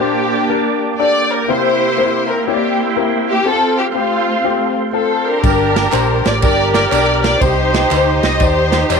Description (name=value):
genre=uptempo gospel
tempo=121 BPM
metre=4/4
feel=swing 66% on 8ths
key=unclear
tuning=A4 = 440 Hz
part: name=warm studio string section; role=melody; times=0.0-9.0 s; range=A3 to Eb5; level=-15 LUFS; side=equal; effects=none
part: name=warm baby grand piano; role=accompaniment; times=0.0-9.0 s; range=G2 to D5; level=-19 LUFS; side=left 15 dB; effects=none
part: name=bright tonewheel organ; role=sustained chords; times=0.0-9.0 s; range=Bb3 to D6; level=-21 LUFS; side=right 15 dB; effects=chorus vibrato, slow rotary speaker
part: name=fingered electric bass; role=bass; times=5.4-9.0 s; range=E1 to Eb2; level=-19 LUFS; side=right 2 dB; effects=transformer saturation
part: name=natural country drum kit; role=drums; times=5.4-9.0 s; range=kick drum, ride cymbal, snare drum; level=-19 LUFS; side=right 2 dB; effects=none
part: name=tambourine and handclaps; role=percussion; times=5.4-9.0 s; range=none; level=-28 LUFS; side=right 17 dB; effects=none
room=light reverb, small room reverb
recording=1960s-style stereo with parts hard left and right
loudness=-12 LUFS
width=side -5 dB against mid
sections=0.0-9.0 A section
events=none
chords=0.0 Gm/Bb; 1.5 C7; 3.5 F; 5.4 Gm; 7.4 Cm